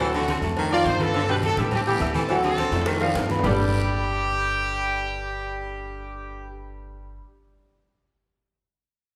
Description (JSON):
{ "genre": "latin, salsa", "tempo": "209 BPM", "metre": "4/4", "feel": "straight", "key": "G major", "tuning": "A4 = 440 Hz", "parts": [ { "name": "bright horn section", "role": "melody", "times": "0.0-6.5 s", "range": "A3 to D5", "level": "-29 LUFS", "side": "equal", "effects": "none" }, { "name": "clear baritone saxophone", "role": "second line", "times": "0.0-3.5 s", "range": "B2 to G3", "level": "-31 LUFS", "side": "equal", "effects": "none" }, { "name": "bright concert grand piano", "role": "accompaniment", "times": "0.0-7.2 s", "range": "F3 to G6", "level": "-30 LUFS", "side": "equal", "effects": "none" }, { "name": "upright bass", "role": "bass", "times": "0.0-7.2 s", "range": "G1 to A2", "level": "-32 LUFS", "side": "equal", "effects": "none" }, { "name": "congas", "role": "percussion", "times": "0.0-3.5 s", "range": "none", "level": "-35 LUFS", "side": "equal", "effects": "none" }, { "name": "cowbell and bongos", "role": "percussion", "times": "0.0-3.5 s", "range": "none", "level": "-37 LUFS", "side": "equal", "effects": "none" }, { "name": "guiro", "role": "percussion", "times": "0.0-3.5 s", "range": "none", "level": "-43 LUFS", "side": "equal", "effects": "none" }, { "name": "agogo bells and timbales", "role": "percussion", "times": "0.1-3.5 s", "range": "none", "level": "-35 LUFS", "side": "equal", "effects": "none" } ], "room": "wet recital hall reverb, RT60 1.9 s", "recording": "recorded in a church or concert hall", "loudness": "-24 LUFS", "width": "mono", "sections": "0.0-3.4 A section; 3.4-5.7 B section", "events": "drum fill 2.7-3.4", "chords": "0.0 D7; 0.6 F7; 1.1 Gadd9; 1.7 Am7; 2.3 D7; 2.9 F7; 3.4 Gadd9", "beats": "| 0.00 0.28 0.57 0.86 | 1.15 1.43 1.72 2.00 | 2.29 2.58 2.87 3.15 | 3.44 3.73 4.01 4.30 | 4.58 4.87 5.16 5.44" }